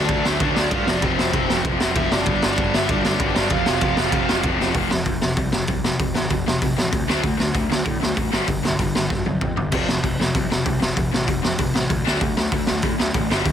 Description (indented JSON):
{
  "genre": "punk rock",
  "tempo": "193 BPM",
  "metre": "4/4",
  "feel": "straight",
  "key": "F major",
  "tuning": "A4 = 439 Hz",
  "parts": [
    { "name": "smooth overdriven lead guitar", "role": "melody", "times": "0.0-4.4 s", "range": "C4 to F5", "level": "-26 LUFS", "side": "right 1 dB", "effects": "ping-pong delay" },
    { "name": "crunchy overdriven guitar", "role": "riff", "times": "0.0-13.5 s", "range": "F2 to D4", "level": "-27 LUFS", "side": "right 12 dB", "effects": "none" },
    { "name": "distorted electric guitar", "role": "riff", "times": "0.0-13.5 s", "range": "F2 to D4", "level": "-25 LUFS", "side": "left 13 dB", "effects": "overdrive" },
    { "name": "fuzz picked electric bass", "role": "bass", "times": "0.0-13.5 s", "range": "F1 to A2", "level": "-27 LUFS", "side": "equal", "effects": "overdrive" },
    { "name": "raw garage drum kit", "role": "drums", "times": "0.1-13.5 s", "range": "crash cymbal, hi-hat, kick drum, ride cymbal, snare drum, toms", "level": "-21 LUFS", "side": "equal", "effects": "none" }
  ],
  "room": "little or no reverb",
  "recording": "dense, heavily limited modern master",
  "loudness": "-18 LUFS",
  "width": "side -9 dB against mid",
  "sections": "0.0-4.8 A section; 4.8-13.5 B section",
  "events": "drum fill 4.6, 9.1-9.7",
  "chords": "0.0 Dm; 0.9 F5; 2.3 G5; 3.5 F5; 7.1 D5; 8.3 G5; 9.7 F5; 12.1 D5",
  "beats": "0.10 0.41 0.72 | 1.03 1.34 1.65 1.96 | 2.27 2.58 2.89 3.20 | 3.51 3.82 4.13 4.44 | 4.75 5.07 5.38 5.69 | 6.00 6.31 6.62 6.93 | 7.24 7.55 7.86 8.17 | 8.48 8.80 9.11 9.42 | 9.73 10.04 10.35 10.66 | 10.97 11.28 11.59 11.90 | 12.21 12.52 12.83 13.14 | 13.46"
}